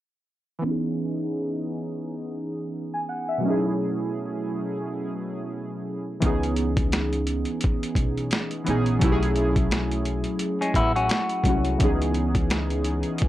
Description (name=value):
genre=lo-fi hip hop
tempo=86 BPM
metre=4/4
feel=swing 56% on 16ths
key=C# minor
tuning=A4 = 440 Hz
part: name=warbly lo-fi synth keys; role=accompaniment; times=0.6-13.3 s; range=B2 to G#5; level=-26 LUFS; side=equal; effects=chorus, low-pass filter
part: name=upright bass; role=bass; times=6.2-13.0 s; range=A1 to C#2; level=-27 LUFS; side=equal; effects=transformer saturation
part: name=boom bap sampler-style drum kit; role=drums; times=6.2-13.3 s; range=hi-hat, kick drum, snare drum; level=-24 LUFS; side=equal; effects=overdrive
part: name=semi-hollow electric guitar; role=second line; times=10.6-11.8 s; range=G#3 to F#4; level=-25 LUFS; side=left 2 dB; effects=spring reverb, tape echo
room=light reverb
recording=dry, gritty hardware recording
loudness=-23 LUFS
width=side -14 dB against mid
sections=0.6-6.2 A section; 6.2-13.3 B section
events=filter sweep on synth keys 0.6-6.2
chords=0.6 C#m9; 3.4 B13sus4; 6.2 C#m9; 9.0 B13sus4; 11.8 C#m9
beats=| 0.64 1.34 2.04 2.74 | 3.44 4.13 4.83 5.53 | 6.22 6.92 7.62 8.32 | 9.02 9.71 10.41 11.11 | 11.81 12.50 13.20